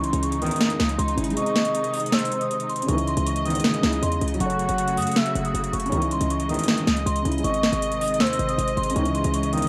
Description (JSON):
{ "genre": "hip hop, trap", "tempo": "158 BPM", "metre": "4/4", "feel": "half-time", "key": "C# harmonic minor", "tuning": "A4 = 440 Hz", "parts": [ { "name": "vibraphone with medium hard mallets", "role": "melody", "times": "0.0-9.7 s", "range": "B#5 to E6", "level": "-31 LUFS", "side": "equal", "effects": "low-pass filter, cassette tape" }, { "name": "felt-muted upright piano", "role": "accompaniment", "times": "0.0-9.7 s", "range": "C#3 to D#5", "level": "-31 LUFS", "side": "equal", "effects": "low-pass filter, cassette tape" }, { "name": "rich symphonic string section", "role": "sustained chords", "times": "0.0-9.7 s", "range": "B#2 to D#5", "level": "-32 LUFS", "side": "equal", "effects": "cassette tape" }, { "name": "short 808-style bass", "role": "bass", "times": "0.0-9.7 s", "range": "F#1 to E3", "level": "-30 LUFS", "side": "equal", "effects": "none" }, { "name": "booming analog drum machine", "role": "drums", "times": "0.0-9.7 s", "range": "hi-hat, snare drum", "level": "-28 LUFS", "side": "equal", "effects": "overdrive, cassette tape" }, { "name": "warm brass ensemble", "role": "stabs", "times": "0.4-9.7 s", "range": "G#1 to D#3", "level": "-30 LUFS", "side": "equal", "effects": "cassette tape" }, { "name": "gliding portamento lead", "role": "second line", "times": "1.4-8.9 s", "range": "B#4 to F#5", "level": "-32 LUFS", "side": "equal", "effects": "chorus, cassette tape, analog delay" } ], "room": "light reverb", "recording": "home recording on cassette", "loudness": "-23 LUFS", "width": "mono", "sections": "0.0-2.9 A section; 2.9-9.7 A section", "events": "kick muted 1.4-2.9", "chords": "0.0 C#madd9; 1.4 G#; 2.9 C#madd9; 4.4 F#m; 5.9 C#madd9; 7.4 G#; 9.0 C#madd9" }